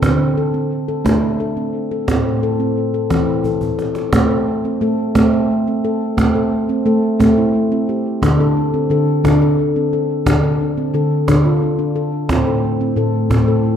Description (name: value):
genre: world meditative, meditative tuned percussion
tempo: 59 BPM (dotted quarters)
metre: 6/8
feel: straight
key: A minor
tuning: A4 = 440 Hz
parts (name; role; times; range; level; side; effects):
- handpan; arpeggios; 0.0-13.8 s; A2 to A4; -15 LUFS; equal; diffuse ambient delay
- cajon; percussion; 0.0-13.5 s; none; -21 LUFS; right 1 dB; none
room: wet concert hall reverb, RT60 1.7 s, studio reverb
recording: dark, warm production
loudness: -14 LUFS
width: side -8 dB against mid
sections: 0.0-4.1 A section; 4.1-13.8 B section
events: drum fill 3.4-4.1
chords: 0.0 D5; 2.1 Am; 8.2 D5; 12.3 Am